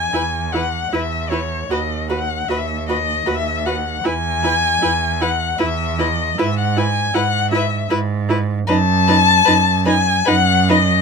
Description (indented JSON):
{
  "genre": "classical, slow romantic movement for string quartet",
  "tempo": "77 BPM",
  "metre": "3/4",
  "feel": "rubato",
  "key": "E major",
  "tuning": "A4 = 438 Hz",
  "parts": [
    { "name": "rich violin", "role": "melody", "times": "0.0-11.0 s", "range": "C#5 to A5", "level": "-18 LUFS", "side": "left 6 dB", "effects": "none" },
    { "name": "rich cello", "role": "bass", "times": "0.0-11.0 s", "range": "D#2 to G#2", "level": "-20 LUFS", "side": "right 5 dB", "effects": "none" },
    { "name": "rich violin", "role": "second line", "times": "0.1-10.8 s", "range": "B4", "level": "-24 LUFS", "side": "left 4 dB", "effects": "none" },
    { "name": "warm viola", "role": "accompaniment", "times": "0.1-10.8 s", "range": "D#4 to F#4", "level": "-22 LUFS", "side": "right 3 dB", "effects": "none" }
  ],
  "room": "light reverb",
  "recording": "close, detailed microphones",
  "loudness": "-15 LUFS",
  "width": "side -5 dB against mid",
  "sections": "0.0-11.0 A section",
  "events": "none",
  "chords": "0.0 E; 1.7 B/D#; 4.1 E; 6.4 E/G#; 8.7 B7/F# (rootless)",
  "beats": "0.13 0.92 | 1.70 2.49 3.27 | 4.05 4.83 5.60 | 6.38 7.14 7.90 | 8.68 9.47 10.26"
}